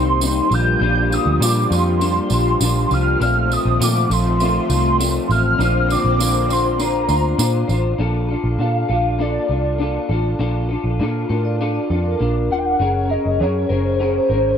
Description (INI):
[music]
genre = indie pop, bedroom pop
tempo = 100 BPM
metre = 4/4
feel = straight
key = Bb major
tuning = A4 = 442 Hz
[part]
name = warbly nostalgic lead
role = melody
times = 0.0-14.6 s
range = C5 to G6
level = -21 LUFS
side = equal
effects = ensemble chorus, tape echo
[part]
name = electric guitar through a small old amp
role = accompaniment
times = 0.0-14.6 s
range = Bb2 to C5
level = -21 LUFS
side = left 4 dB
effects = ensemble chorus, warbly pitch drift
[part]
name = lush unison pad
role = sustained chords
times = 0.0-8.0 s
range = D3 to C4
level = -27 LUFS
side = right 2 dB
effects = chorus
[part]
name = vintage muted picked electric bass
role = bass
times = 0.0-14.6 s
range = Eb1 to Bb2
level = -20 LUFS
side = right 1 dB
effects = none
[part]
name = tambourine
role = percussion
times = 0.2-7.8 s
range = none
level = -28 LUFS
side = right 10 dB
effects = none
[part]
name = vibraphone with medium mallets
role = second line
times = 11.3-12.8 s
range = Bb4 to F5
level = -27 LUFS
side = right 3 dB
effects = analog chorus, tape echo
[sound]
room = light reverb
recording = none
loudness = -16 LUFS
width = side -8 dB against mid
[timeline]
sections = 0.0-8.0 A section; 8.0-14.6 B section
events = none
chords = 0.0 Cm7; 0.5 Gm7/Bb; 3.2 F7/Bb; 5.6 Bbadd9; 8.0 Bbmaj7; 12.8 Gbadd9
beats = 0.22 | 0.82 1.41 2.01 2.61 | 3.21 3.81 4.40 5.00 | 5.60 6.20 6.80 7.40 | 8.00 8.60 9.20 9.80 | 10.40 11.00 11.60 12.20 | 12.80 13.40 14.01